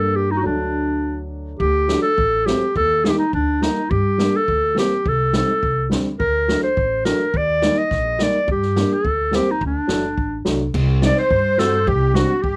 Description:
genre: klezmer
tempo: 105 BPM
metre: 2/4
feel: straight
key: D phrygian dominant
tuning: A4 = 442 Hz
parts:
  - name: clear clarinet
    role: melody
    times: 0.0-12.6 s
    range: D4 to Eb5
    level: -21 LUFS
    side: equal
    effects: cassette tape
  - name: dark upright piano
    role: accompaniment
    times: 0.0-12.3 s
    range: F#3 to F#4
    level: -25 LUFS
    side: equal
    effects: cassette tape
  - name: upright bass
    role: bass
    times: 0.0-12.6 s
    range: F#1 to G2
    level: -26 LUFS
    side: equal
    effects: none
  - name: open jazz drum kit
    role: drums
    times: 1.6-12.6 s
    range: crash cymbal, kick drum, snare drum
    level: -29 LUFS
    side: equal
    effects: cassette tape
  - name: musette accordion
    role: second line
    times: 11.0-12.6 s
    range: F#4 to D5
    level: -30 LUFS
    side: equal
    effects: cassette tape
room: moderate studio ambience, RT60 0.5 s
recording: home recording on cassette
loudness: -19 LUFS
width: mono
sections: 0.0-1.6 A section; 1.6-10.7 A section; 10.7-12.6 B section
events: none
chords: 0.5 D; 2.8 Eb; 3.9 Gm; 5.0 Cm; 6.2 D; 7.3 Eb; 8.5 Gm; 9.6 D; 10.7 C5

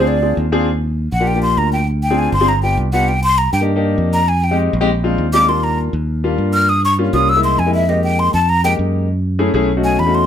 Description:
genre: jazz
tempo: 200 BPM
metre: 4/4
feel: straight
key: C minor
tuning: A4 = 439 Hz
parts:
  - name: breathy mellow jazz flute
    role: melody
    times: 0.0-10.3 s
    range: D5 to F6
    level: -16 LUFS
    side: equal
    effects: none
  - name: warm grand piano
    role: accompaniment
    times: 0.0-10.2 s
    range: G3 to Ab4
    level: -19 LUFS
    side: left 3 dB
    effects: none
  - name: fingered electric bass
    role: bass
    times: 0.0-10.3 s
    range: G1 to G2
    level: -17 LUFS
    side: right 1 dB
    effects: none
room: light reverb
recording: none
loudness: -13 LUFS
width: side -9 dB against mid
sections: 0.0-5.5 A section; 5.5-10.3 A section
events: flute solo 0.0-10.3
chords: 0.0 Bb7 (rootless); 0.7 Ebmaj9; 1.9 Dm7b5; 2.5 G7; 3.1 Cm7; 4.3 Fm7; 4.9 Bb7; 5.5 Ebmaj9; 6.7 Gm7b5; 7.3 C7alt; 7.9 Fm11; 9.1 Gbm9; 9.7 B9

